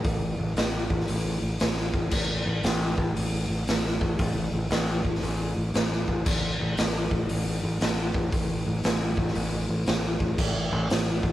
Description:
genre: blues rock power trio and southern rock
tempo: 116 BPM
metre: 4/4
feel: swing 65% on 8ths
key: unclear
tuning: A4 = 439 Hz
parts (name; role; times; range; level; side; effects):
- growling fingered electric bass; bass; 0.0-11.3 s; A1; -28 LUFS; equal; overdrive
- raw garage drum kit; drums; 0.0-11.3 s; crash cymbal, hi-hat, kick drum, snare drum; -26 LUFS; equal; none
room: moderate studio reverb, RT60 0.6 s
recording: rough rehearsal-room recording, lossy compression artefacts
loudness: -24 LUFS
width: side -14 dB against mid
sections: 0.0-11.3 A section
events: none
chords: none

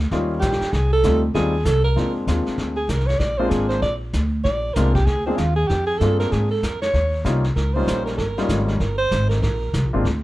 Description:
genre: jazz, small-group swing and bop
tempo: 193 BPM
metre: 4/4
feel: swing 62% on 8ths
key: Bb mixolydian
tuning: A4 = 440 Hz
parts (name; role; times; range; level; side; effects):
- upright bass; bass; 0.0-10.2 s; G1 to Ab2; -21 LUFS; equal; none
- warm baby grand piano; accompaniment; 0.1-10.0 s; G3 to Ab4; -24 LUFS; left 2 dB; none
- vintage brush drum kit; drums; 0.1-10.2 s; brushed snare drum, hi-hat, kick drum, snare drum; -28 LUFS; equal; none
- breathy alto saxophone; second line; 0.4-9.9 s; C4 to D5; -23 LUFS; right 2 dB; none
room: light reverb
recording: dark, warm production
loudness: -18 LUFS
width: side -17 dB against mid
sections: 0.0-2.0 A section; 2.0-10.2 A section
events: alto saxophone solo 0.0-10.2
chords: 0.1 Eb7; 0.7 F7; 2.0 Bb7; 6.9 Eb7; 9.4 Bb7

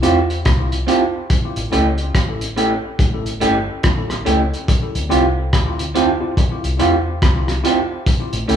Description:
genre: lovers rock reggae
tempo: 71 BPM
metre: 4/4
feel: swing 62% on 16ths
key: D minor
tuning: A4 = 441 Hz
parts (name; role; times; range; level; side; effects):
- tine electric piano; accompaniment; 0.0-8.6 s; C4 to A4; -23 LUFS; left 4 dB; tape echo
- electric guitar through a small old amp; stabs; 0.0-8.6 s; A3 to G4; -19 LUFS; right 5 dB; spring reverb
- deep dub fingered electric bass; bass; 0.0-8.6 s; G1 to E2; -22 LUFS; equal; none
- cloth-damped thuddy drum kit; drums; 0.0-8.6 s; hi-hat, kick drum, rim click; -18 LUFS; equal; none
room: moderate large studio reverb, RT60 1.2 s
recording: band playing live in one room, small room ambience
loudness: -15 LUFS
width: side -8 dB against mid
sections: 0.0-8.6 A section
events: none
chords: 0.0 Dm11 (rootless); 1.3 A7; 4.7 Dm11; 8.1 A7

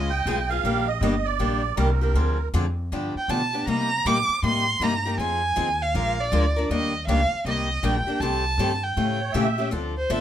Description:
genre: acoustic string swing (jazz manouche)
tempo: 158 BPM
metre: 4/4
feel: swing 63% on 8ths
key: unclear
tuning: A4 = 438 Hz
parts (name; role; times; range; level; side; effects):
- warm violin; melody; 0.0-0.5, 3.2-10.2 s; C5 to D6; -25 LUFS; right 2 dB; none
- picked steel-string acoustic guitar; accompaniment; 0.0-10.2 s; C3 to Bb4; -26 LUFS; left 3 dB; none
- upright bass; bass; 0.0-10.2 s; G1 to C3; -26 LUFS; equal; none
- musette accordion; second line; 0.1-2.5, 9.2-9.7 s; Bb4 to G5; -27 LUFS; right 8 dB; none
room: moderate club reverb, RT60 0.6 s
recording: minimal, uncompressed stereo recording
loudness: -21 LUFS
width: side -10 dB against mid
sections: 0.0-9.7 A section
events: none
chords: 0.0 C#9; 0.6 Ebmaj7; 2.2 Dm7b5; 2.9 G7; 3.7 Cm7; 5.2 Fm7; 5.9 Bb7; 6.7 Ebmaj7; 8.2 Am7b5; 9.0 A7b9

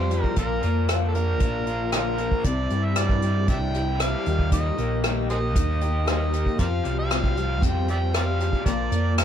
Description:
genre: folk rock and heartland rock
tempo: 116 BPM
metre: 4/4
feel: straight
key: unclear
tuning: A4 = 437 Hz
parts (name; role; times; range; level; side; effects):
- overdriven harmonica; melody; 0.0-9.2 s; Eb4 to G5; -30 LUFS; right 2 dB; none
- picked swing-style acoustic guitar; accompaniment; 0.0-9.2 s; Bb2 to Bb4; -32 LUFS; left 8 dB; none
- raw garage guitar; riff; 0.0-9.2 s; Bb2 to G4; -29 LUFS; equal; overdrive, harmonic tremolo
- fingered electric bass; bass; 0.0-9.2 s; Bb1 to G2; -25 LUFS; equal; none
- unplugged drum kit; drums; 0.1-9.2 s; hi-hat, kick drum, rim click; -26 LUFS; equal; none
room: light reverb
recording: none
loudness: -21 LUFS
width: side -9 dB against mid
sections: 0.0-9.2 A section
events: none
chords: 0.4 Bb; 2.4 Cadd9; 4.3 Eb; 6.6 Fsus2; 8.7 Bb

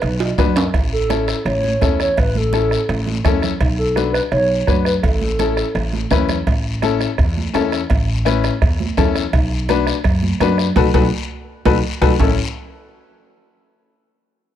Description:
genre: latin, cumbia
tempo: 168 BPM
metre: 4/4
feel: straight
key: A major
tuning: A4 = 440 Hz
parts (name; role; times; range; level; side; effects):
- hollow clarinet-like synth lead; melody; 0.0-6.1 s; A4 to C#5; -20 LUFS; right 1 dB; chorus
- upright bass; bass; 0.0-12.4 s; A1 to F#2; -20 LUFS; equal; none
- bombo; percussion; 0.0-12.3 s; none; -20 LUFS; right 1 dB; none
- congas; percussion; 0.0-12.3 s; none; -25 LUFS; right 7 dB; none
- cowbell and timbales; percussion; 0.0-12.3 s; none; -26 LUFS; right 5 dB; none
- guiro; percussion; 0.0-12.3 s; none; -31 LUFS; left 10 dB; none
- bright upright piano; accompaniment; 0.4-12.4 s; C#4 to B4; -20 LUFS; left 11 dB; none
room: studio ambience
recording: dry, close 1970s-style studio recording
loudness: -15 LUFS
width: side -10 dB against mid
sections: 0.0-6.5 A section; 6.5-12.2 B section; 12.2-13.6 C section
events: drum fill 0.2-0.7, 11.7-12.2; band accent 10.8-12.2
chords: 0.0 Bm; 0.7 A; 3.6 Bm7; 5.0 A; 9.3 Bm7; 12.2 A

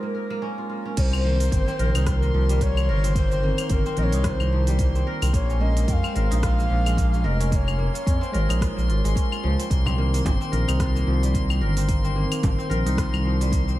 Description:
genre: organic downtempo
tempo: 110 BPM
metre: 4/4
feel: swing 57% on 16ths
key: unclear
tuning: A4 = 440 Hz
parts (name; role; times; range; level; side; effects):
- breathy bright low ney; melody; 0.0-9.2 s; Bb4 to G5; -31 LUFS; left 1 dB; vintage 12-bit sampler grit, tape echo, shimmer reverb
- tine electric piano; accompaniment; 0.0-13.8 s; C3 to Bb4; -30 LUFS; right 2 dB; medium tremolo, sidechain pumping, diffuse ambient delay
- kora; arpeggios; 0.0-13.8 s; F3 to Bb4; -31 LUFS; left 1 dB; diffuse ambient delay, shimmer reverb
- drifting glass-harmonics texture; texture; 0.0-13.8 s; Bb4 to C6; -38 LUFS; left 4 dB; chorus, built-in reverb, shimmer reverb
- smooth gliding synth bass; bass; 1.0-13.8 s; F1 to F2; -22 LUFS; equal; none
- electronic kick drum; drums; 1.0-13.6 s; none; -24 LUFS; equal; none
- organic electronic drum kit; drums; 1.0-13.8 s; cabasa, claves, crash cymbal, hi-hat, rim click; -33 LUFS; left 2 dB; none
- frame drum; percussion; 9.9-12.6 s; none; -31 LUFS; right 2 dB; none
room: light reverb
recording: none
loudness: -20 LUFS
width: side -15 dB against mid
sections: 1.0-13.8 A section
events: none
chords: 0.0 Bbm7; 1.0 Cm7; 5.3 Bbm7; 9.7 Cm7

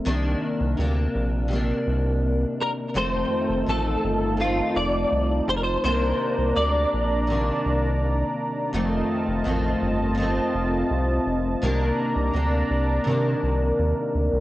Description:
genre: indie pop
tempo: 83 BPM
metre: 4/4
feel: straight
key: unclear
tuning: A4 = 439 Hz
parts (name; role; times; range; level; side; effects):
- picked steel-string acoustic guitar; accompaniment; 0.0-14.4 s; F2 to D4; -25 LUFS; left 1 dB; ensemble chorus, vibrato effect, cassette tape
- round analog bass; bass; 0.1-14.4 s; F1 to C3; -25 LUFS; equal; none
- direct-recorded clean electric guitar; melody; 2.6-8.0 s; F4 to D5; -25 LUFS; equal; ensemble chorus, cassette tape, tape echo
- warm analog pad; sustained chords; 2.9-14.4 s; D4 to Bb5; -28 LUFS; right 2 dB; lush chorus, cassette tape
room: light reverb, digital ambience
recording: home recording on cassette, nothing above 10.3 kHz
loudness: -21 LUFS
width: side -16 dB against mid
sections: 0.0-14.4 A section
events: none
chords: 0.1 Cm9; 3.0 F7; 5.8 Cm9; 8.7 F7; 11.6 Cm9

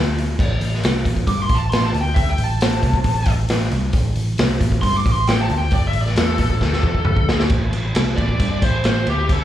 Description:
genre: blues rock power trio and southern rock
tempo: 135 BPM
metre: 4/4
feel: straight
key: A minor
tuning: A4 = 441 Hz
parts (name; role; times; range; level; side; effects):
- vintage muted picked electric bass; bass; 0.0-9.4 s; G1 to G2; -20 LUFS; equal; none
- raw garage drum kit; drums; 0.2-9.4 s; crash cymbal, hi-hat, kick drum, snare drum, toms; -19 LUFS; equal; none
- bluesy overdriven lead guitar; melody; 1.3-9.4 s; G4 to D6; -23 LUFS; equal; distortion, plate reverb, slapback echo, tape echo
room: little or no reverb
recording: live gig heard through the venue's PA, club reverb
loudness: -16 LUFS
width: side -12 dB against mid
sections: 0.0-7.5 A section; 7.5-9.4 A section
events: lead electric guitar solo 0.0-7.5, 7.5-9.4; drum fill 6.6-7.5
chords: 0.0 N.C.; 7.5 Am

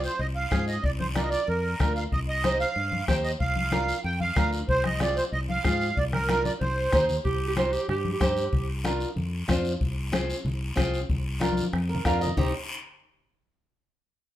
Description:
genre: latin, cumbia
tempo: 187 BPM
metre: 4/4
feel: straight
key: C minor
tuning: A4 = 440 Hz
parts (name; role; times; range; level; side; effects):
- accordion; melody; 0.0-7.1 s; Bb4 to G5; -28 LUFS; right 3 dB; light tremolo tuning
- flamenco guitar; accompaniment; 0.0-12.5 s; C4 to F5; -29 LUFS; equal; none
- fingered electric bass; bass; 0.0-12.5 s; C2 to Ab2; -30 LUFS; equal; none
- guiro; percussion; 0.0-12.4 s; none; -39 LUFS; left 2 dB; none
- congas; percussion; 0.2-12.4 s; none; -33 LUFS; left 2 dB; none
- bombo; percussion; 0.5-12.4 s; none; -29 LUFS; left 1 dB; none
- clear clarinet; second line; 7.2-8.7, 12.4-12.5 s; F4 to G4; -31 LUFS; right 3 dB; none
room: moderate large studio reverb, RT60 0.9 s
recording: minimal, uncompressed stereo recording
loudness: -24 LUFS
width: side -13 dB against mid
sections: 0.0-7.2 A section; 7.2-12.4 B section; 12.4-13.7 C section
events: drum fill 6.4-7.2, 11.4-12.4; nylon-string guitar fill 11.7-12.4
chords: 0.0 Fm/C; 0.8 Bb/C; 2.1 Cm; 3.4 Bb/C; 4.7 Fm/C; 6.0 Bb/C; 6.6 Cm; 8.5 Bb/C; 9.8 Fm/C; 11.1 Bb/C; 12.4 Cm

